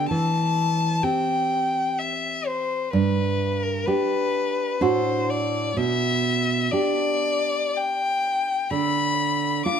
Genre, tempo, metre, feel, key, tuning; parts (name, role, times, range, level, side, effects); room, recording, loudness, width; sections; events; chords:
romantic duo for violin and classical guitar; 64 BPM; 3/4; rubato; A4 = 439 Hz
rich violin; melody; 0.0-9.8 s; Bb4 to D6; -24 LUFS; left 4 dB
nylon-string guitar; accompaniment; 0.0-9.8 s; G2 to G4; -24 LUFS; right 3 dB
light reverb; close, detailed microphones; -21 LUFS; side -8 dB against mid
0.0-9.8 A section
0.1 C/E; 2.9 G; 4.8 D7/A; 5.8 G/B; 8.7 Bdim/D